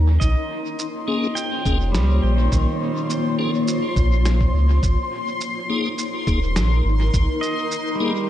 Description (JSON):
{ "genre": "ambient dub", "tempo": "104 BPM", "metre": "4/4", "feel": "swing 54% on 16ths", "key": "Bb dorian", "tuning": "A4 = 443 Hz", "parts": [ { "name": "granular cloud pad", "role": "sustained chords", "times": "0.0-8.3 s", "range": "Bb3 to Bb5", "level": "-26 LUFS", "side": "left 1 dB", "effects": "built-in reverb" }, { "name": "warm sub bass", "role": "bass", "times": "0.0-7.3 s", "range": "Eb1 to Eb2", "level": "-18 LUFS", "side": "equal", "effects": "none" }, { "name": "bubbling stepped-filter texture", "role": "texture", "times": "0.0-8.3 s", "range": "Db4 to C6", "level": "-30 LUFS", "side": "left 4 dB", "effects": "chorus, built-in reverb" }, { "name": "pedal steel guitar", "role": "arpeggios", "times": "0.2-3.8, 7.4-8.3 s", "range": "Eb3 to G5", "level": "-28 LUFS", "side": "right 2 dB", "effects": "dub echo" }, { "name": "electronic kick drum", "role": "drums", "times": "0.2-7.3 s", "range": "none", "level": "-22 LUFS", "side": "equal", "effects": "none" }, { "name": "electronic shaker and snare drum", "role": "drums", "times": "0.2-7.8 s", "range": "none", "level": "-30 LUFS", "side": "right 1 dB", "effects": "dub echo" }, { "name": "tonewheel organ", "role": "stabs", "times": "1.1-8.1 s", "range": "Bb3 to Ab4", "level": "-28 LUFS", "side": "left 3 dB", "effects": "overdrive, chorus vibrato, slow rotary speaker, dub echo" } ], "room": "light reverb", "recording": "nothing above 10.8 kHz", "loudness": "-18 LUFS", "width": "side -12 dB against mid", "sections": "0.0-8.3 A section", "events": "none", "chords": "0.2 Bbm7; 4.8 Absus2" }